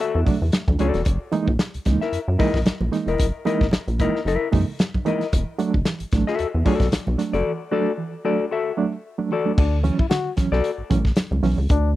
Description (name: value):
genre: funk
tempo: 113 BPM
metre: 4/4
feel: swing 56% on 16ths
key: unclear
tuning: A4 = 440 Hz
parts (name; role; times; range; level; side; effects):
- semi-hollow electric guitar; accompaniment; 0.0-10.7 s; E4 to E5; -25 LUFS; left 5 dB; spring reverb
- warm soul drum kit; drums; 0.0-11.8 s; crash cymbal, hi-hat, kick drum, snare drum; -22 LUFS; equal; none
- rubbery square bass; bass; 0.1-12.0 s; E1 to F#2; -22 LUFS; equal; none
- reed electric piano; stabs; 0.3-11.8 s; D3 to D#4; -24 LUFS; right 5 dB; fast tremolo
- congas; percussion; 0.3-11.4 s; none; -31 LUFS; right 2 dB; none
- breathy trombone; second line; 9.6-11.9 s; D4 to F#4; -25 LUFS; left 7 dB; none
room: little or no reverb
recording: dry, close 1970s-style studio recording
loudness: -19 LUFS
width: side -15 dB against mid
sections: 0.0-9.6 A section; 9.6-12.0 B section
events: break 7.5-9.6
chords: 0.0 E9sus4; 1.1 F#13; 5.3 E9sus4; 9.6 Dmaj7